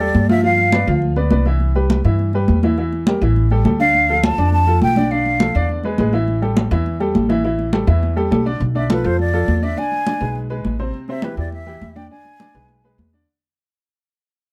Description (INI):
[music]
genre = Afro-Cuban jazz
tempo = 206 BPM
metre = 4/4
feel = straight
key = A minor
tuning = A4 = 441 Hz
[part]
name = breathy concert flute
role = melody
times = 0.0-1.0, 3.8-5.7, 8.8-12.9 s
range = B4 to A5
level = -21 LUFS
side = equal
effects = none
[part]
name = clear upright piano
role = accompaniment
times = 0.0-13.3 s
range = C3 to F5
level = -24 LUFS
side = equal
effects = none
[part]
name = upright bass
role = bass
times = 0.0-13.2 s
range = A1 to G2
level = -21 LUFS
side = equal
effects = none
[part]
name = congas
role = percussion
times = 0.0-13.3 s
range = none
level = -23 LUFS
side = equal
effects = none
[sound]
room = light reverb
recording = close, detailed microphones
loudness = -17 LUFS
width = mono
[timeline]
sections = 0.0-8.6 A section; 8.6-13.3 B section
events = fade-out 8.6-13.3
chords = 0.4 G6; 1.6 Cmaj7; 2.8 Edim; 3.4 A5; 3.9 Dm; 5.1 Bm7b5; 5.7 E7; 6.3 A5; 8.6 Bm7b5; 9.8 G#dim; 10.9 Cadd9; 12.1 E7